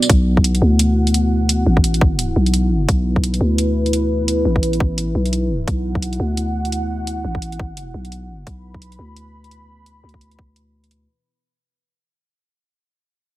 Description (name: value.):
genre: half-time drum and bass.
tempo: 172 BPM.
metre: 4/4.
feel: swing 59% on 16ths, half-time.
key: B minor.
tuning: A4 = 440 Hz.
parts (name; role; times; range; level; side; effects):
dark analog pad; sustained chords; 0.0-11.2 s; B3 to B5; -24 LUFS; equal; chorus, sidechain pumping.
electronic tambourine and hi-hat; drums; 0.0-11.0 s; none; -22 LUFS; right 1 dB; none.
growling 808-style bass; bass; 0.1-11.1 s; A1 to D2; -18 LUFS; equal; none.
electronic kick drum; drums; 0.1-10.5 s; none; -17 LUFS; equal; none.
room: digital ambience.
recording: none.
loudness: -15 LUFS.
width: side -16 dB against mid.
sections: 0.0-11.3 A section.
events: fade-out 0.1-11.3.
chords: 0.0 B5.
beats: | 0.09 0.44 0.79 1.14 | 1.49 1.84 2.19 2.54 | 2.88 3.23 3.58 3.93 | 4.28 4.63 4.98 5.33 | 5.67 6.02 6.37 6.72 | 7.07 7.42 7.77 8.12 | 8.47 8.81 9.16 9.51 | 9.86 10.21 10.56 10.91.